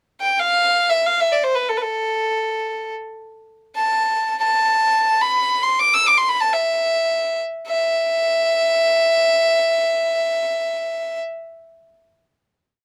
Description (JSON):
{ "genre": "Arabic maqam ensemble", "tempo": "free time", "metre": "none", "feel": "none", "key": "unclear", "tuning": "A4 = 443 Hz", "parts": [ { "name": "rich violin", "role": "solo", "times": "0.2-11.2 s", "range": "A4 to E6", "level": "-19 LUFS", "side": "equal", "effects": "none" } ], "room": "light reverb", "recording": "none", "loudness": "-19 LUFS", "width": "mono", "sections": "0.0-7.7 free-time section; 7.7-11.6 final note", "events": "none", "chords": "none", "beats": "free time" }